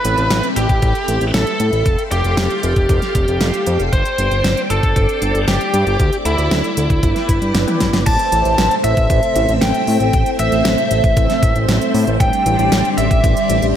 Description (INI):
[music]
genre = synthwave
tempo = 116 BPM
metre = 4/4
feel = straight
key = A minor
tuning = A4 = 439 Hz
[part]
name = biting lead guitar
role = melody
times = 0.0-13.7 s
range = E4 to A5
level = -18 LUFS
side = equal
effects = overdrive, ping-pong delay
[part]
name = string machine, full ensemble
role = sustained chords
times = 0.0-13.8 s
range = G3 to D6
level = -21 LUFS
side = equal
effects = phaser, ensemble chorus, sidechain pumping
[part]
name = pop drum kit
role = drums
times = 0.0-13.7 s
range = crash cymbal, hi-hat, snare drum, toms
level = -21 LUFS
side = equal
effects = small room ambience, gated reverb
[part]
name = fat analog bass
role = bass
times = 0.1-13.7 s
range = F1 to A2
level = -18 LUFS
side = equal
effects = tube saturation, sidechain pumping
[part]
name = electronic kick drum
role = drums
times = 0.7-13.3 s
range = none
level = -17 LUFS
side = equal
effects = small room ambience
[sound]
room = light reverb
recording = none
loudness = -13 LUFS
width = side -10 dB against mid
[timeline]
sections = 0.0-8.1 A section; 8.1-13.8 B section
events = drum fill 7.7-8.1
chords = 0.0 Amadd9; 1.9 Fadd9; 3.9 Gsus4; 6.0 Dsus2; 7.0 G; 8.1 Am; 12.2 Cadd9/A